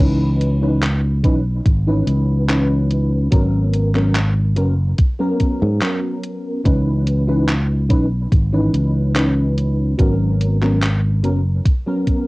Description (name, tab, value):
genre	vaporwave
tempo	72 BPM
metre	4/4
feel	straight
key	C# dorian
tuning	A4 = 439 Hz
part	mellow FM electric piano	accompaniment	0.0-12.3 s	E3 to B4	-21 LUFS	equal	ensemble chorus, tape echo
part	fingered electric bass	bass	0.0-11.6 s	F#1 to G#2	-17 LUFS	equal	none
part	gated 80s digital drum machine	drums	0.4-12.2 s	handclaps, hi-hat	-25 LUFS	equal	gated reverb
part	electronic kick drum	drums	1.2-12.2 s	none	-16 LUFS	equal	none
room	light reverb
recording	home recording on cassette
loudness	-15 LUFS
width	side -22 dB against mid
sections	0.0-12.3 A section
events	none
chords	0.0 C#m9; 3.3 G#m11; 6.7 C#m9; 10.0 G#m11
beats	0.82 1.66 2.49 | 3.32 4.16 4.99 5.82 | 6.66 7.49 8.32 9.16 | 9.99 10.82 11.66